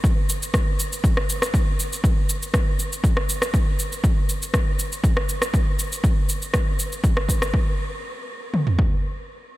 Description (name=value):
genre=afro house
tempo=120 BPM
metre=4/4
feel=straight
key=none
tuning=none
part: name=electronic shaker and rim click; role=drums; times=0.0-7.5 s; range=none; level=-26 LUFS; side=equal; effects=overdrive
part: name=house drum kit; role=drums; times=0.0-8.9 s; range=kick drum, toms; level=-20 LUFS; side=equal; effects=overdrive
room=light reverb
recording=none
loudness=-20 LUFS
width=side -17 dB against mid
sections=0.0-7.5 A section; 7.5-9.6 B section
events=none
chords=none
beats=0.04 0.54 1.04 | 1.54 2.04 2.54 3.04 | 3.54 4.04 4.54 5.04 | 5.54 6.04 6.54 7.04 | 7.54 8.04 8.54